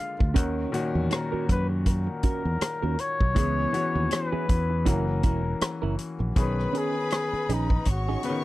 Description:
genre	lush 1970s-style soul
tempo	80 BPM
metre	4/4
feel	swing 58% on 16ths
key	B major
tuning	A4 = 440 Hz
part	warm flugelhorn	melody	0.0-8.4 s	D#4 to E#5	-30 LUFS	left 3 dB	none
part	clear grand piano	accompaniment	0.0-8.4 s	A#2 to B4	-31 LUFS	left 3 dB	none
part	clean electric guitar	riff	0.2-8.3 s	B3 to A#4	-32 LUFS	right 8 dB	none
part	fingered electric bass	bass	0.2-8.2 s	E1 to F#2	-27 LUFS	equal	none
part	vintage drum kit	drums	0.2-8.4 s	hi-hat, kick drum, rim click	-25 LUFS	equal	none
part	clear studio violin section	second line	6.4-8.4 s	B4 to C#6	-36 LUFS	equal	none
room	little or no reverb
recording	dry, close 1970s-style studio recording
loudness	-23 LUFS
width	side -16 dB against mid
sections	0.0-6.4 A section; 6.4-8.4 B section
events	flugelhorn solo 6.4-8.4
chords	0.4 D#m7; 3.4 C#m7; 4.9 F#7; 6.4 B69

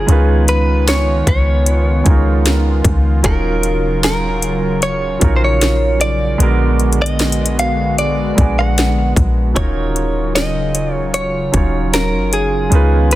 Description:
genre	contemporary R&B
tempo	76 BPM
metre	4/4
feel	swing 54% on 16ths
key	Eb minor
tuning	A4 = 441 Hz
part	direct-recorded clean electric guitar	melody	0.0-13.2 s	Ab4 to Gb5	-20 LUFS	equal	tape echo
part	warm grand piano	accompaniment	0.0-13.2 s	D3 to Db5	-21 LUFS	right 4 dB	none
part	warm analog pad	sustained chords	0.0-13.2 s	Db3 to Gb4	-22 LUFS	left 1 dB	chorus
part	soft 808-style bass	bass	0.0-13.2 s	Eb1 to Db2	-16 LUFS	equal	none
part	trap drum kit	drums	0.1-13.2 s	hi-hat, kick drum, rim click, snare drum	-17 LUFS	left 1 dB	none
room	little or no reverb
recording	dense, heavily limited modern master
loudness	-12 LUFS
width	side -15 dB against mid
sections	0.0-13.2 A section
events	none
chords	0.1 Db9; 3.2 Ebm9; 6.4 Bb7b9b13; 9.6 Ebm9

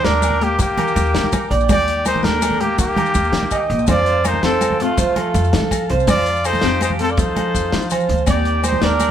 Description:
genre	highlife guitar band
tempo	109 BPM (dotted quarters)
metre	12/8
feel	straight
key	unclear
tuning	A4 = 439 Hz
part	clear trumpet	melody	0.0-9.1 s	F4 to D5	-20 LUFS	equal	none
part	clear trumpet	second line	0.0-9.1 s	A3 to G4	-28 LUFS	left 4 dB	none
part	fingerpicked steel-string acoustic guitar	accompaniment	0.0-9.1 s	Bb3 to Eb4	-25 LUFS	left 6 dB	none
part	combo organ	sustained chords	0.0-9.1 s	Bb4 to D6	-31 LUFS	left 2 dB	none
part	electric guitar through a small old amp	arpeggios	0.0-9.1 s	G4 to Eb5	-22 LUFS	right 5 dB	none
part	upright bass	bass	0.0-9.1 s	Bb1 to F3	-21 LUFS	equal	none
part	warm soul drum kit	drums	0.0-9.1 s	hi-hat, kick drum, snare drum	-24 LUFS	left 1 dB	none
part	agogo bells	percussion	0.2-9.1 s	none	-31 LUFS	left 6 dB	none
part	congas	percussion	0.2-9.1 s	none	-24 LUFS	right 2 dB	none
part	maracas	percussion	0.2-9.1 s	none	-31 LUFS	left 7 dB	none
room	light reverb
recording	band playing live in one room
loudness	-15 LUFS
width	side -10 dB against mid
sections	0.0-9.1 A section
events	drum fill 7.5-8.3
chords	0.0 Ebmaj7; 3.9 F7; 8.3 Ebmaj7

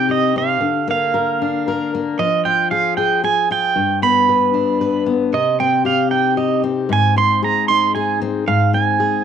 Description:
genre	acoustic folk duo or small band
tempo	115 BPM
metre	3/4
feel	straight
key	C minor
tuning	A4 = 441 Hz
part	pedal steel guitar	melody	0.0-9.2 s	Eb5 to C6	-17 LUFS	right 7 dB	cassette tape
part	fingerpicked steel-string acoustic guitar	accompaniment	0.0-9.2 s	G2 to B4	-18 LUFS	left 6 dB	cassette tape, plate reverb
room	wet small room reverb, RT60 0.5 s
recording	home recording on cassette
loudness	-15 LUFS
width	side -8 dB against mid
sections	0.0-9.2 A section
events	none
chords	0.0 Cm; 0.6 Bb/D; 2.2 Fm; 3.8 G; 5.3 Cm; 6.9 Ab; 8.5 Fm/Ab

